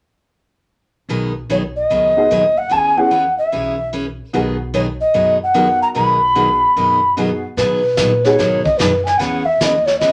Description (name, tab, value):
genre	country, western swing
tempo	148 BPM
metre	4/4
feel	swing 65% on 8ths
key	B major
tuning	A4 = 440 Hz
part	picked steel-string acoustic guitar	accompaniment	1.1-10.1 s	B2 to G#4	-24 LUFS	equal	none
part	upright bass	bass	1.1-10.1 s	B1 to B2	-30 LUFS	equal	none
part	breathy alto ocarina	melody	1.5-10.1 s	B4 to B5	-16 LUFS	equal	none
part	honky-tonk upright piano	accompaniment	2.2-8.4 s	G#3 to A#4	-22 LUFS	equal	none
part	vintage brush drum kit	drums	7.6-10.1 s	brushed snare drum, hi-hat, kick drum, snare drum	-25 LUFS	equal	none
room	wet studio reverb, RT60 0.5 s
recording	none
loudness	-16 LUFS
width	mono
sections	1.1-7.6 A section; 7.6-10.1 B section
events	none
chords	1.1 B6; 2.7 E6; 4.3 B6; 9.2 E6